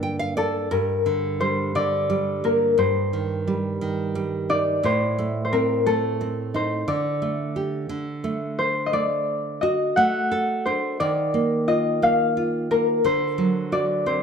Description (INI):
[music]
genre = children's music, lullaby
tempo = 58 BPM (dotted quarters)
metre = 6/8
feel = straight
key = G minor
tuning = A4 = 440 Hz
[part]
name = concert harp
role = melody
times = 0.0-14.2 s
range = A4 to G5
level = -22 LUFS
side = left 2 dB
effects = none
[part]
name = nylon-string guitar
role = accompaniment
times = 0.0-14.2 s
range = G2 to G5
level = -25 LUFS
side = right 3 dB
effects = none
[sound]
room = moderate recital hall reverb, RT60 1.6 s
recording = dark, warm production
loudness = -21 LUFS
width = side -6 dB against mid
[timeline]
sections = 0.7-14.2 A section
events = nylon-string guitar fill 0.0-0.7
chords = 0.0 Gm; 2.8 Cm/G; 4.8 Adim; 6.9 Dsus4; 7.9 D; 11.0 Ebsus2; 13.0 D7